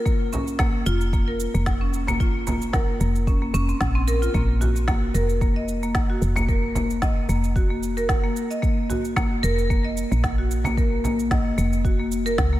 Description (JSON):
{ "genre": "organic downtempo", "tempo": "112 BPM", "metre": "4/4", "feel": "swing 55% on 16ths", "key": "unclear", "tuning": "A4 = 440 Hz", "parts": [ { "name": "marimba with hard mallets", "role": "arpeggios", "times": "0.0-12.6 s", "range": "Bb3 to Eb5", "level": "-25 LUFS", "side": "equal", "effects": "diffuse ambient delay" }, { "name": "electronic cabasa and snare drum", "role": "drums", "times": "0.1-12.5 s", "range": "none", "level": "-32 LUFS", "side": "equal", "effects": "none" }, { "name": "electronic kick drum", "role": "drums", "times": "0.1-12.5 s", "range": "none", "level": "-23 LUFS", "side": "equal", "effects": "none" }, { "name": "frame drum", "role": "percussion", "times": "0.3-11.4 s", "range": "none", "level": "-30 LUFS", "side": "right 1 dB", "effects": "none" }, { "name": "woody FM bass", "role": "bass", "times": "0.9-12.6 s", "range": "F1 to Db2", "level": "-24 LUFS", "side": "equal", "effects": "sidechain pumping" } ], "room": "light reverb", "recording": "none", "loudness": "-20 LUFS", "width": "side -15 dB against mid", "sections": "0.0-12.6 A section", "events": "none", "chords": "0.0 Bb5; 4.3 Eb5" }